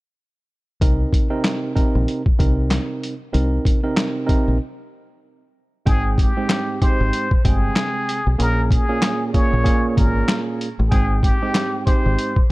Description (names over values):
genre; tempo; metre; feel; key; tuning
hip hop, boom-bap hip-hop; 95 BPM; 4/4; swing 59% on 16ths; unclear; A4 = 440 Hz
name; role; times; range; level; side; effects
tine electric piano; accompaniment; 0.8-12.3 s; Ab2 to G5; -23 LUFS; right 3 dB; high-pass filter, low-pass filter
deep dub fingered electric bass; bass; 0.8-12.2 s; G1 to C2; -19 LUFS; equal; none
boom bap sampler-style drum kit; drums; 0.8-12.5 s; handclaps, hi-hat, kick drum, snare drum; -19 LUFS; equal; none
trumpet with plunger mute; melody; 5.9-12.5 s; G4 to Db5; -25 LUFS; left 1 dB; high-pass filter, low-pass filter
finger snaps; percussion; 6.5-11.7 s; none; -34 LUFS; left 6 dB; none
room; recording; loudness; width
digital ambience; dark, warm production; -17 LUFS; side -20 dB against mid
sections
0.8-5.9 A section; 5.9-12.5 B section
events
break 4.6-5.9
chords
0.8 Cm7; 5.9 Abmaj7; 8.4 Bbm7; 10.9 Abmaj7